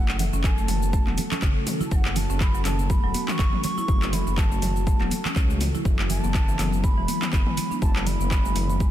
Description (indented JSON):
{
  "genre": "afro house",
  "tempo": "122 BPM",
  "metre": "4/4",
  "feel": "swing 56% on 16ths",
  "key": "F# minor",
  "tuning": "A4 = 440 Hz",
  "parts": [
    { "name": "bansuri", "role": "melody", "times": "0.0-8.9 s", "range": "F#5 to C#6", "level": "-32 LUFS", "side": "right 3 dB", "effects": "digital delay" },
    { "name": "ethereal airy pad", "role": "sustained chords", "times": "0.0-8.9 s", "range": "F#3 to A4", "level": "-32 LUFS", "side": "equal", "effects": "ensemble chorus, built-in reverb, sidechain pumping" },
    { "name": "buzzing marimba with medium hard mallets", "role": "arpeggios", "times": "0.0-8.9 s", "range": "C#3 to E4", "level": "-32 LUFS", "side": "equal", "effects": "sidechain pumping, digital delay" },
    { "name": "dark detuned saw bass", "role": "bass", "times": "0.0-8.9 s", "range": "E1 to C#2", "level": "-26 LUFS", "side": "equal", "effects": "sidechain pumping" },
    { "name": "deep house drum kit", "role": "drums", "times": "0.1-8.9 s", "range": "cabasa, handclaps, hi-hat, toms", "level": "-30 LUFS", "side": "left 1 dB", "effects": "overdrive, studio reverb" },
    { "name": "congas", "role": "percussion", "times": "0.1-8.8 s", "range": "none", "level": "-33 LUFS", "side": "right 4 dB", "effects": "none" },
    { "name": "electronic kick drum", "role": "drums", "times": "0.4-8.9 s", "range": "none", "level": "-22 LUFS", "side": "equal", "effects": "overdrive, studio reverb" }
  ],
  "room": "little or no reverb",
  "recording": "dense, heavily limited modern master",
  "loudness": "-21 LUFS",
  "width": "side -12 dB against mid",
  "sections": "0.0-8.9 A section",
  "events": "none",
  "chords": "0.0 F#m; 5.9 Esus2"
}